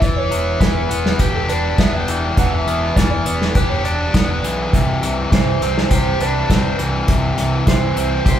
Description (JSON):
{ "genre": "indie rock", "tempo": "102 BPM", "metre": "4/4", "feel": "straight", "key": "unclear", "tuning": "A4 = 439 Hz", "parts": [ { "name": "electric guitar through a small old amp", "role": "melody", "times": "0.0-8.4 s", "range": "G4 to G5", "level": "-24 LUFS", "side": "right 4 dB", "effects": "none" }, { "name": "distorted electric guitar", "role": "riff", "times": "0.0-8.4 s", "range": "C3 to G4", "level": "-20 LUFS", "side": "left 2 dB", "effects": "overdrive" }, { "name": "fuzz picked electric bass", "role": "bass", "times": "0.0-8.4 s", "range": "E1 to C2", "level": "-22 LUFS", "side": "right 1 dB", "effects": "overdrive" }, { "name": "unplugged drum kit", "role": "drums", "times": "0.0-8.4 s", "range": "hi-hat, kick drum, snare drum", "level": "-17 LUFS", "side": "equal", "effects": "none" } ], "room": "moderate large studio reverb, RT60 0.8 s", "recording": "band playing live in one room", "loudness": "-15 LUFS", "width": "side -10 dB against mid", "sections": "0.0-8.4 A section", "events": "none", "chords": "0.0 Em7; 4.7 Cadd9", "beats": "| 0.03 0.61 1.20 1.79 | 2.38 2.97 3.56 4.14 | 4.73 5.32 5.91 6.50 | 7.08 7.67 8.26" }